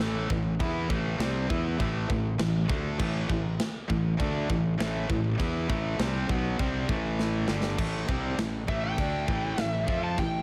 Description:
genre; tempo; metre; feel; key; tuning
heavy metal; 100 BPM; 4/4; straight; A minor; A4 = 440 Hz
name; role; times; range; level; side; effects
heavy high-gain guitar; riff; 0.0-10.4 s; G2 to F4; -35 LUFS; equal; distortion
heavy high-gain guitar; riff; 0.0-10.4 s; G2 to F4; -35 LUFS; equal; distortion
fuzz fingered electric bass; bass; 0.0-10.4 s; G1 to F2; -34 LUFS; equal; overdrive
tight metal drum kit; drums; 0.0-10.3 s; china cymbal, crash cymbal, kick drum, snare drum; -34 LUFS; equal; none
high-gain lead guitar; melody; 8.7-10.4 s; E5 to A5; -34 LUFS; equal; distortion
room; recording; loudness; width
small room ambience; none; -28 LUFS; mono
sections
0.0-7.8 A section; 7.8-10.4 B section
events
drum fill 7.2-7.8; lead electric guitar solo 7.8-10.4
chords
0.0 Am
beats
0.00 | 0.60 1.20 1.80 2.40 | 3.00 3.60 4.20 4.79 | 5.39 5.99 6.59 7.19 | 7.79 8.39 8.98 9.58 | 10.18

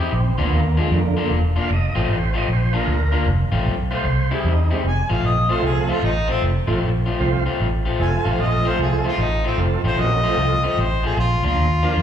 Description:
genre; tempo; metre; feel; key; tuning
electric blues shuffle; 152 BPM; 4/4; swing 65% on 8ths; F mixolydian; A4 = 440 Hz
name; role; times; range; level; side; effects
tonewheel organ; accompaniment; 0.0-12.0 s; D3 to F5; -26 LUFS; right 6 dB; slow rotary speaker, overdrive, slapback echo
electric guitar through a small old amp; riff; 0.0-12.0 s; Bb2 to G4; -25 LUFS; left 5 dB; spring reverb, slapback echo
vintage muted fingered electric bass; bass; 0.1-12.0 s; E1 to F2; -20 LUFS; equal; none
warm harmonica; melody; 4.9-12.0 s; C4 to Ab5; -23 LUFS; left 1 dB; overdrive, slapback echo
room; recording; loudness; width
light reverb; live gig heard through the venue's PA, club reverb; -17 LUFS; side -9 dB against mid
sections
0.0-4.8 A section; 4.8-12.0 B section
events
none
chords
0.1 Bb; 1.7 F; 2.5 Bb; 3.3 F; 4.1 C; 4.8 F; 11.2 Bb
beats
| 0.12 0.52 0.91 1.30 | 1.70 2.09 2.48 2.87 | 3.27 3.66 4.05 4.45 | 4.84 5.24 5.63 6.02 | 6.42 6.81 7.21 7.60 | 8.00 8.39 8.79 9.19 | 9.58 9.98 10.38 10.77 | 11.17 11.57 11.96

